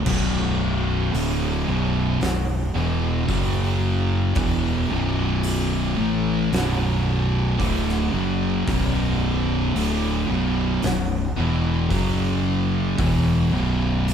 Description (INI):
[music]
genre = stoner and doom metal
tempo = 56 BPM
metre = 4/4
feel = straight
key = B minor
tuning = A4 = 441 Hz
[part]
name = thick fuzz guitar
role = riff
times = 0.0-14.1 s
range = B1 to A3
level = -25 LUFS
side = left 5 dB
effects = distortion
[part]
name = thick fuzz guitar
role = riff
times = 0.0-14.1 s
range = B1 to A3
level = -25 LUFS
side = right 6 dB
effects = distortion
[part]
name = fuzz fingered electric bass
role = bass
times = 0.0-14.1 s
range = B0 to A1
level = -26 LUFS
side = equal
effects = overdrive
[part]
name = thick fuzz guitar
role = riff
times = 0.1-14.1 s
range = B1 to A3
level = -28 LUFS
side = left 1 dB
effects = distortion
[part]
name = oversized low-tuned drum kit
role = drums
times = 0.1-14.1 s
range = crash cymbal, hi-hat, kick drum, snare drum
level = -29 LUFS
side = equal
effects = none
[sound]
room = light reverb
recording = band playing live in one room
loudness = -20 LUFS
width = side -8 dB against mid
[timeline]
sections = 0.1-14.1 A section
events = none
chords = 0.1 Bm; 3.3 F#5; 4.4 Bm; 11.9 F#5; 13.0 B5